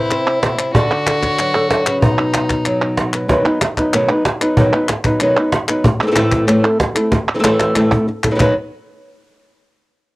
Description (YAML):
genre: flamenco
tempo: 188 BPM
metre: 4/4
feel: straight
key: unclear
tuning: A4 = 440 Hz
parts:
  - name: flamenco guitar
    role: melody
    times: 0.0-8.5 s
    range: A2 to D5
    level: -16 LUFS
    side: equal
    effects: none
  - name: rich violin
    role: second line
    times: 0.0-3.1 s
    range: D#4 to F#4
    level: -21 LUFS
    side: left 2 dB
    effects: cassette tape
  - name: palmas hand claps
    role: percussion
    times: 0.1-8.5 s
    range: none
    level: -20 LUFS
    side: equal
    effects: none
  - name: cajon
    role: percussion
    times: 0.4-8.5 s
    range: none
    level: -17 LUFS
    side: right 1 dB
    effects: none
room: moderate small room reverb, RT60 0.5 s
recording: home recording on cassette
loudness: -13 LUFS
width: side -20 dB against mid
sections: 0.0-3.3 A section; 3.3-8.4 B section; 8.4-9.7 C section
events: drum fill 7.6-8.4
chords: 0.0 C; 0.7 D; 2.0 B; 5.8 Am; 8.4 N.C.